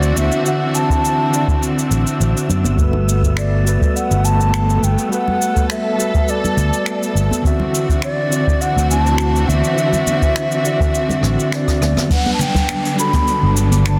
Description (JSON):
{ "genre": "sunset chillout", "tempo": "103 BPM", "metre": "4/4", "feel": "swing 54% on 16ths", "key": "G major", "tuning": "A4 = 440 Hz", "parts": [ { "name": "baroque flute", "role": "melody", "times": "0.0-14.0 s", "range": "D5 to B5", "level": "-24 LUFS", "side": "equal", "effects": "tape echo" }, { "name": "mellow tine electric piano", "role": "accompaniment", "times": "0.0-14.0 s", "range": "D3 to E5", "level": "-24 LUFS", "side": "equal", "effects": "tape echo" }, { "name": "rich studio string section", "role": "sustained chords", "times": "0.0-14.0 s", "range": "D3 to A4", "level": "-25 LUFS", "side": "equal", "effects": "none" }, { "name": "fingered electric bass", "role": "bass", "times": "0.0-14.0 s", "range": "G1 to F#2", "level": "-18 LUFS", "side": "equal", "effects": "none" }, { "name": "jazz brush drum kit", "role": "drums", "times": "0.0-14.0 s", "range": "cabasa, finger snaps, hi-hat, rim click, toms", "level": "-27 LUFS", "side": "equal", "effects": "soft clipping on snare" }, { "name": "wind-like tuned noise texture", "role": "texture", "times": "0.0-12.1 s", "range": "E5 to E6", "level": "-36 LUFS", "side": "equal", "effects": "built-in reverb" }, { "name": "congas", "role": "percussion", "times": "0.2-13.8 s", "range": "none", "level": "-28 LUFS", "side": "equal", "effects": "none" }, { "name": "electronic kick drum", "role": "drums", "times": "0.9-13.2 s", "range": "none", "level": "-20 LUFS", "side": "equal", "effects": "none" }, { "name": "downlifter", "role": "sound effects", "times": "12.1-14.0 s", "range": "none", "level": "-28 LUFS", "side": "equal", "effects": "none" } ], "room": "light reverb, small room reverb", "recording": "dense, heavily limited modern master", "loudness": "-17 LUFS", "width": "mono", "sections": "0.0-12.1 A section; 12.1-14.0 B section", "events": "drum fill 11.2-12.1", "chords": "0.0 D9; 2.8 Gmaj9; 7.4 D9; 12.1 Gmaj7" }